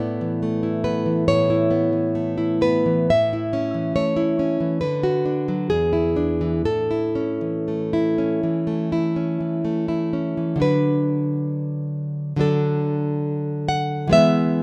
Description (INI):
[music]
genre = romantic piece for solo classical guitar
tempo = 58-71 BPM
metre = 4/4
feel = rubato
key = A major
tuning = A4 = 443 Hz
[part]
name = nylon-string guitar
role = solo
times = 0.0-14.6 s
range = E2 to F#5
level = -22 LUFS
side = equal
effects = none
[sound]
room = moderate recital hall reverb, RT60 1.7 s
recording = none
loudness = -22 LUFS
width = mono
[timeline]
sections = 0.0-10.6 A section; 10.6-14.6 B section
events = none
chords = 0.0 E5/A; 3.1 A; 4.8 Bm/D; 5.7 E7; 6.7 A; 10.6 D; 14.1 E